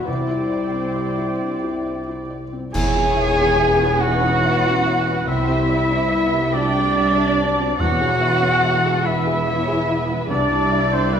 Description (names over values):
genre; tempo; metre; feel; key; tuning
cinematic, emotional film score for orchestra; 48 BPM (dotted quarters); 6/8; rubato; unclear; A4 = 436 Hz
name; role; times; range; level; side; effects
muted studio violin section; melody; 0.0-11.2 s; A4 to G5; -30 LUFS; left 3 dB; none
concert flute; second line; 0.0-11.2 s; B4 to G#5; -26 LUFS; left 1 dB; none
mellow clarinet; second line; 0.0-2.4 s; C5; -36 LUFS; left 4 dB; none
muted studio violin section; second line; 0.0-11.2 s; B4 to G#5; -28 LUFS; left 2 dB; none
felt-muted upright piano; accompaniment; 0.0-11.2 s; C2 to E5; -26 LUFS; left 2 dB; none
muted studio viola section; accompaniment; 0.0-11.2 s; D#3 to G4; -29 LUFS; right 2 dB; none
warm French horn section; sustained chords; 0.0-11.2 s; B3 to G#4; -24 LUFS; left 3 dB; none
muted studio cello section; bass; 0.0-11.2 s; C2 to E2; -28 LUFS; right 2 dB; none
muted studio double bass section; bass; 0.0-11.2 s; E1 to C2; -28 LUFS; right 3 dB; none
warm oboe; second line; 0.1-11.2 s; B4 to G#5; -25 LUFS; right 2 dB; none
muted cello; melody; 2.7-11.2 s; B3 to G#4; -24 LUFS; right 3 dB; none
clash cymbals and concert bass drum; percussion; 2.7-4.4 s; none; -28 LUFS; equal; none
timpani; percussion; 2.7-9.0 s; E2; -29 LUFS; right 1 dB; none
room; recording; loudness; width
wet recital hall reverb, RT60 1.4 s; recorded in a church or concert hall; -16 LUFS; side -8 dB against mid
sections
0.0-2.7 A section; 2.7-11.2 B section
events
band accent 2.7-3.6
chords
0.1 Cadd9; 2.7 E; 5.3 Cadd9; 7.8 E; 10.3 Cadd9